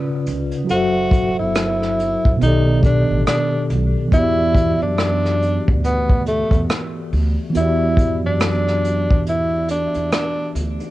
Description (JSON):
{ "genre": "lo-fi hip hop", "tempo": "70 BPM", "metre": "4/4", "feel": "swing 61% on 16ths", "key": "E minor", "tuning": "A4 = 440 Hz", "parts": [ { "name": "mellow tine electric piano", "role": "accompaniment", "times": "0.0-10.9 s", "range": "B2 to E5", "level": "-22 LUFS", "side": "equal", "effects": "medium stereo tremolo, cassette tape, low-pass filter, plate reverb" }, { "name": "upright bass", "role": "bass", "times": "0.3-10.8 s", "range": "F#1 to F#2", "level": "-22 LUFS", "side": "equal", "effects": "none" }, { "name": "vintage brush drum kit", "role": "drums", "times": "0.3-10.9 s", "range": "hi-hat, kick drum, rim click", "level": "-20 LUFS", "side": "equal", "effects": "cassette tape" }, { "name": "breathy tenor saxophone", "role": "melody", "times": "0.7-10.5 s", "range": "A3 to F#4", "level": "-21 LUFS", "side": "equal", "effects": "low-pass filter, analog delay, plate reverb" } ], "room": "light reverb", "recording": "home recording on cassette", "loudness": "-16 LUFS", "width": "side -16 dB against mid", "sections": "0.0-10.9 A section", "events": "break 9.3-10.9", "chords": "0.0 C#7b9; 0.7 F#m7b5; 2.4 B7alt; 4.1 Em9" }